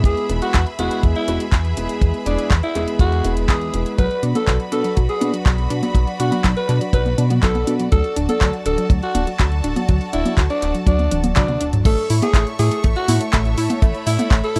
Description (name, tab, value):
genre	italo disco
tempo	122 BPM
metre	4/4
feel	straight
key	A major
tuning	A4 = 440 Hz
part	rich symphonic string section	sustained chords	0.0-14.6 s	A3 to C#6	-32 LUFS	equal	none
part	clear concert grand piano	stabs	0.0-4.0 s	G#3 to G#4	-27 LUFS	equal	none
part	chorused synth bass	bass	0.0-14.6 s	D1 to B2	-23 LUFS	equal	none
part	kick drum	drums	0.0-14.4 s	none	-18 LUFS	equal	none
part	raspy alto saxophone	melody	0.1-14.6 s	D4 to B4	-26 LUFS	equal	tape echo
part	house drum kit	drums	0.1-14.6 s	cabasa, congas, crash cymbal, handclaps, hi-hat, toms	-26 LUFS	equal	overdrive
part	analog pluck	arpeggios	4.0-14.6 s	F#3 to E4	-27 LUFS	equal	chorus, cassette tape, tape echo
room	little or no reverb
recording	dry, close 1970s-style studio recording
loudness	-18 LUFS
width	mono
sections	0.0-11.9 A section; 11.9-14.6 B section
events	drum fill 11.1-11.9; band accent 11.4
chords	0.1 E; 4.0 Bm; 7.9 D; 11.9 A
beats	| 0.05 0.54 1.03 1.53 | 2.02 2.51 3.00 3.49 | 3.98 4.48 4.97 5.46 | 5.95 6.44 6.94 7.43 | 7.92 8.41 8.90 9.39 | 9.89 10.38 10.87 11.36 | 11.85 12.35 12.84 13.33 | 13.82 14.31